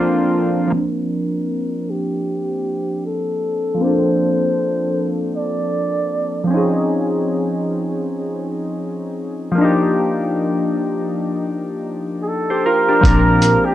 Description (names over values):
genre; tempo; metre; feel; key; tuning
lo-fi hip hop; 78 BPM; 4/4; swing 59% on 16ths; Bb major; A4 = 440 Hz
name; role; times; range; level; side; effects
warm analog keys; accompaniment; 0.0-13.7 s; F3 to C5; -18 LUFS; left 1 dB; chorus, cassette tape, low-pass filter
trumpet with bucket mute; melody; 0.7-6.5, 12.2-13.7 s; G4 to D5; -20 LUFS; right 1 dB; low-pass filter
upright bass; bass; 13.0-13.5 s; Bb1; -18 LUFS; equal; none
lo-fi sampler-style drum kit; drums; 13.0-13.6 s; hi-hat, kick drum, shaker; -14 LUFS; equal; vintage 12-bit sampler grit
room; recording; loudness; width
wet small room reverb, RT60 0.5 s; none; -17 LUFS; side -13 dB against mid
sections
0.7-13.0 A section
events
break 0.0-0.7; filter sweep 0.7-13.0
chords
0.0 Bbmaj9; 6.5 Dbmaj9; 9.6 Ebmaj9; 13.0 Bbadd9